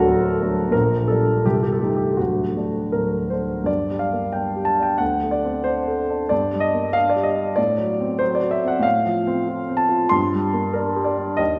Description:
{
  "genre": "classical, romantic character piece for solo piano",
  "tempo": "79-96 BPM",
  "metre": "2/4",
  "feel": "rubato",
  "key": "G minor",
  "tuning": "A4 = 439 Hz",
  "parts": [
    { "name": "warm grand piano", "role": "solo", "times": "0.0-11.6 s", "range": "C1 to C6", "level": "-21 LUFS", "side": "equal", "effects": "none" }
  ],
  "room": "wet scoring stage reverb, RT60 1.9 s",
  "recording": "recorded in a church or concert hall",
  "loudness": "-21 LUFS",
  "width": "mono",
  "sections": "0.0-3.7 A section; 3.7-11.6 B section",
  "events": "none",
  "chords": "0.0 D; 0.7 Gm/Bb; 1.4 Adim/C; 2.2 D; 3.7 Gm; 5.0 D5; 6.3 Gm; 7.6 F#dim/A; 8.8 F/A; 10.1 Gm"
}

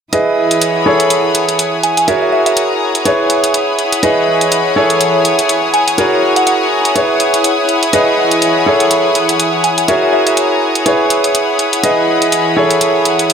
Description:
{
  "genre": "piano house",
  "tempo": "123 BPM",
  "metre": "4/4",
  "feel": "swing 57% on 16ths",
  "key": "E major",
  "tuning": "A4 = 442 Hz",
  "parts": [
    { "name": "warm chamber violin section", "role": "sustained chords", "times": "0.1-13.3 s", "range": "E4 to D#6", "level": "-19 LUFS", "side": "right 2 dB", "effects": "none" },
    { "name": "bright grand piano", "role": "riff", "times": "0.1-13.3 s", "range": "E4 to D#5", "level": "-13 LUFS", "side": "right 2 dB", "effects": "low-pass filter, digital delay" },
    { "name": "electronic hi-hat", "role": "drums", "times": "0.1-13.3 s", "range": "none", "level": "-17 LUFS", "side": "equal", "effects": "none" },
    { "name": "rich studio string section", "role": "texture", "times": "0.1-13.3 s", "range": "E3 to B5", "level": "-16 LUFS", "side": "left 5 dB", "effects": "none" },
    { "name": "soft synth bell", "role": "melody", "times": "1.8-2.5, 5.7-6.6, 9.6-10.3 s", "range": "E5 to G#5", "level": "-16 LUFS", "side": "right 1 dB", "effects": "chorus, phaser, digital delay" }
  ],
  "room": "moderate plate reverb, RT60 2.5 s",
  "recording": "none",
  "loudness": "-10 LUFS",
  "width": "side -7 dB against mid",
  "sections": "0.1-13.3 A section",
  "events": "none",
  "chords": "0.1 Emaj7; 0.9 Amaj7/E; 2.1 F#add9; 3.1 Emaj7; 4.8 Amaj7/E; 6.0 F#add9; 7.0 Emaj7; 8.7 Amaj7/E; 9.9 F#add9; 10.9 Emaj7; 12.6 Amaj7/E"
}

